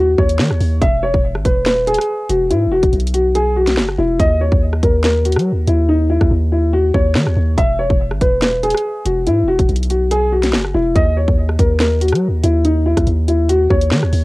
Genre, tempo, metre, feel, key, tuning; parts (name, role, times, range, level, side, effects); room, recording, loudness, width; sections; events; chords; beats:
hip hop, drill; 142 BPM; 4/4; half-time; A4 = 445 Hz
dark baby grand piano; melody; 0.0-14.2 s; Eb4 to E5; -16 LUFS; left 1 dB; low-pass filter, cassette tape, tape echo
long sustained 808-style bass; bass; 0.0-14.2 s; Eb1 to Gb3; -16 LUFS; equal
drill drum kit; drums; 0.2-14.2 s; hi-hat, kick drum, rim click, snare drum; -17 LUFS; equal; cassette tape
light reverb; home recording on cassette; -13 LUFS; side -20 dB against mid
0.8-14.2 A section
hi-hats muted 5.9-7.6
0.0 Ebm7; 0.8 E5; 4.2 Eb7(no3); 7.6 E5; 11.0 Eb7(no3)
0.39 | 0.82 1.24 1.66 2.08 | 2.51 2.93 3.35 3.77 | 4.20 4.62 5.04 5.46 | 5.89 6.31 6.73 7.15 | 7.58 8.00 8.42 8.84 | 9.27 9.69 10.11 10.53 | 10.96 11.38 11.80 12.22 | 12.65 13.07 13.49 13.91